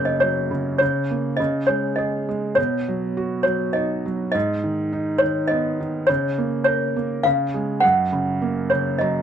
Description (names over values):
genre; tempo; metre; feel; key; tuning
children's music, lullaby; 102 BPM; 3/4; straight; F# major; A4 = 441 Hz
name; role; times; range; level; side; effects
felt-muted upright piano; accompaniment; 0.0-9.2 s; F#2 to A#5; -23 LUFS; right 3 dB; none
toy piano; melody; 0.1-9.2 s; C#5 to F#5; -21 LUFS; left 1 dB; none
room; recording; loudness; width
little or no reverb; dry, close 1970s-style studio recording; -19 LUFS; side -8 dB against mid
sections
0.0-9.2 A section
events
felt piano fill 8.7-9.2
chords
0.0 F#; 0.8 A#m/C#; 1.4 C#sus2; 2.6 B; 4.3 G#m; 6.1 A#m/C#; 7.3 C#; 7.8 F#